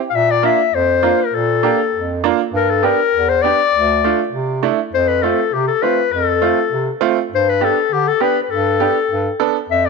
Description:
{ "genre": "klezmer", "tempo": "100 BPM", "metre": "2/4", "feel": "straight", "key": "D minor, F lydian from 4.9 s", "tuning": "A4 = 440 Hz", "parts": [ { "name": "warm clarinet", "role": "melody", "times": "0.1-9.9 s", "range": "G4 to F5", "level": "-16 LUFS", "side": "left 10 dB", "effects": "none" }, { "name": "warm bass clarinet", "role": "bass", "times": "0.1-9.9 s", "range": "D2 to D3", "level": "-21 LUFS", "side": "right 3 dB", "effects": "none" }, { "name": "bright upright piano", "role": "accompaniment", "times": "0.4-9.6 s", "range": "A3 to A4", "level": "-20 LUFS", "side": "right 14 dB", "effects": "none" } ], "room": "light reverb, studio ambience", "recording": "1960s-style stereo with parts hard left and right", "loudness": "-14 LUFS", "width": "side -4 dB against mid", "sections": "0.0-4.9 A section; 4.9-9.9 B section", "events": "none", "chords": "0.1 Bb; 2.5 G; 3.7 D5; 4.9 F; 7.3 G" }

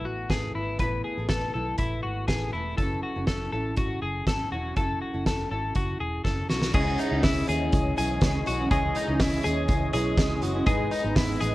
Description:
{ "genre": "jangly indie pop", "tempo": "122 BPM", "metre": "4/4", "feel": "straight", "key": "C# minor", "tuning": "A4 = 440 Hz", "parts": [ { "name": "fingerpicked steel-string acoustic guitar", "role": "accompaniment", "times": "0.0-11.5 s", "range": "C#3 to D#5", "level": "-32 LUFS", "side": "right 1 dB", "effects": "none" }, { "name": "twelve-string electric guitar", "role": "arpeggios", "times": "0.0-11.5 s", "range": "D#4 to B4", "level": "-30 LUFS", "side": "left 3 dB", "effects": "none" }, { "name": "vintage muted fingered electric bass", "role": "bass", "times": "0.0-11.5 s", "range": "E1 to D#2", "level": "-31 LUFS", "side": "equal", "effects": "none" }, { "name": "loose indie drum kit", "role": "drums", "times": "0.3-11.5 s", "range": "crash cymbal, hi-hat, kick drum, snare drum", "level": "-28 LUFS", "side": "equal", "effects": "none" }, { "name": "warm analog keys", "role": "accompaniment", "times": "6.7-11.5 s", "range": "D#4 to D#5", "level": "-34 LUFS", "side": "right 1 dB", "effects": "chorus, phaser" }, { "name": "phased analog pad", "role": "sustained chords", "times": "6.7-11.5 s", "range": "E3 to D#5", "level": "-35 LUFS", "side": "equal", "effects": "phaser, chorus" } ], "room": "small room ambience", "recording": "worn, warbling old tape, cassette tape, warbly pitch drift", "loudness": "-24 LUFS", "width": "side -17 dB against mid", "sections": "0.0-6.7 A section; 6.7-11.5 B section", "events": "drum fill 6.2-6.7", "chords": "0.0 Asus2; 2.8 F#m7; 6.7 C#madd9; 10.7 G#m" }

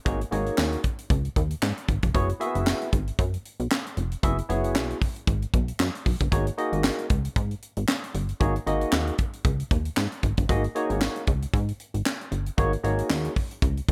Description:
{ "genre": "early-eighties boogie funk", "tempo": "115 BPM", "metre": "4/4", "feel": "swing 56% on 16ths", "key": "G# minor", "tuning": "A4 = 440 Hz", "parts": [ { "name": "barky tine electric piano", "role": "accompaniment", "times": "0.1-13.3 s", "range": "A#3 to E5", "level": "-30 LUFS", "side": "equal", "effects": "lush chorus" }, { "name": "plucky analog bass", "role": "bass", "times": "0.1-13.9 s", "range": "E#1 to G#2", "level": "-29 LUFS", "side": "equal", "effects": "none" }, { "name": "tight funk drum kit", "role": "drums", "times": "0.1-13.9 s", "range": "handclaps, hi-hat, kick drum, snare drum", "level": "-28 LUFS", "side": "equal", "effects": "gated reverb" }, { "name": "tambourine", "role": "percussion", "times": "0.6-13.2 s", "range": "none", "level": "-42 LUFS", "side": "equal", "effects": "none" } ], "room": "small room ambience", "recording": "none", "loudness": "-26 LUFS", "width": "mono", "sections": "0.0-13.9 A section", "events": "none", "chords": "0.0 G#9sus4; 2.1 F#9sus4; 6.3 G#9sus4" }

